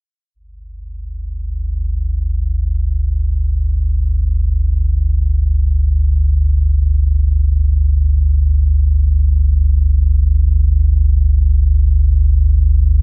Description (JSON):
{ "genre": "ambient", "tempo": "free time", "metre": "none", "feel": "none", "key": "unclear", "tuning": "A4 = 439 Hz", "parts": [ { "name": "deep rumbling drone", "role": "drone", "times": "0.9-13.0 s", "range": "G1 to D2", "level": "-12 LUFS", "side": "equal", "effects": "built-in reverb, wide subtle chorus" } ], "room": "little or no reverb", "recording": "worn, warbling old tape, cassette tape, warbly pitch drift, nothing above 7.6 kHz", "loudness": "-12 LUFS", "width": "side -40 dB against mid", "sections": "0.3-13.0 A section", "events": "filter sweep on synth drone 0.3-13.0", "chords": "0.3 G5", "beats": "free time" }